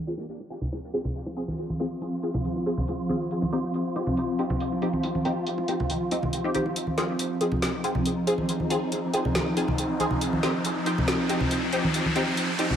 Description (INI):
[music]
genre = deep dubstep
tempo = 139 BPM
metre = 4/4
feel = half-time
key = F minor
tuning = A4 = 440 Hz
[part]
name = granular cloud pad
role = sustained chords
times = 1.1-12.8 s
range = F3 to C4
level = -30 LUFS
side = equal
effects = built-in reverb
[part]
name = wind-like tuned noise texture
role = texture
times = 1.5-12.8 s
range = Eb4 to F4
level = -34 LUFS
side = equal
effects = built-in reverb
[part]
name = filtered dub chord stab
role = stabs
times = 0.1-12.6 s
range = C4 to Ab4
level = -30 LUFS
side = left 1 dB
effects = phaser, ensemble chorus, dub echo
[part]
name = deep house drum kit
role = drums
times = 0.1-12.7 s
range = hi-hat, snare drum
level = -31 LUFS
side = equal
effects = none
[part]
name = bongos and congas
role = percussion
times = 0.2-12.8 s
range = none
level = -31 LUFS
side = right 1 dB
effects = none
[part]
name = soft dub sub bass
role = bass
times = 6.8-12.8 s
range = none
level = barely audible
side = none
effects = none
[part]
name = riser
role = sound effects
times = 8.6-12.8 s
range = none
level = -32 LUFS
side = equal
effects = none
[sound]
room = wet echo chamber reverb, RT60 2.1 s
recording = vinyl crackle, low-pass filter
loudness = -24 LUFS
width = side -9 dB against mid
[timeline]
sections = 0.0-6.8 A section; 6.8-12.8 B section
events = filter sweep on synth stab 0.0-6.8; filter sweep on ambient pad 0.0-6.8; filter sweep 0.0-6.8; build-up 6.8-12.8; riser 8.6-12.8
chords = 0.0 Fm; 3.3 Eb6; 6.8 Fm; 10.2 Eb6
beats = 0.29 0.72 1.15 | 1.58 2.01 2.45 2.88 | 3.31 3.74 4.17 4.60 | 5.04 5.47 5.90 6.33 | 6.76 7.19 7.63 8.06 | 8.49 8.92 9.35 9.78 | 10.22 10.65 11.08 11.51 | 11.94 12.37